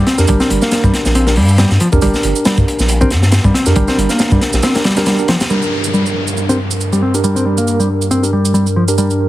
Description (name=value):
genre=breakbeat, breaks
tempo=138 BPM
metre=4/4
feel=swing 56% on 16ths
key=G minor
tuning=A4 = 440 Hz
part: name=modern bright picked electric bass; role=riff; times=0.0-9.1 s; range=F3 to C4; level=-16 LUFS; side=left 1 dB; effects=low-pass filter, ping-pong delay
part: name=saturated sub bass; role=bass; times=0.0-4.6 s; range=G1 to G2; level=-14 LUFS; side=equal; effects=none
part: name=crunchy breakbeat drum kit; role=drums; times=0.1-5.5 s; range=hi-hat, kick drum, snare drum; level=-15 LUFS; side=equal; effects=none
part: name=mellow tine electric piano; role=stabs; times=0.2-9.3 s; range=D4 to Bb4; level=-19 LUFS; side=right 2 dB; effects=medium stereo tremolo, ping-pong delay
part: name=shaker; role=drums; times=0.2-9.2 s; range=none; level=-24 LUFS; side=right 5 dB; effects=none
part: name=warbly tape-like pad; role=sustained chords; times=5.5-9.3 s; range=G2 to Bb4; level=-18 LUFS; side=equal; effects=chorus, built-in reverb, vintage 12-bit sampler grit, sidechain pumping
part: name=downlifter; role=sound effects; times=5.5-9.0 s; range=none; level=-24 LUFS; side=left 2 dB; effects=none
room=light reverb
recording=heavily compressed radio sound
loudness=-11 LUFS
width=side -15 dB against mid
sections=0.0-5.5 A section; 5.5-9.3 B section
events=none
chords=0.0 Gm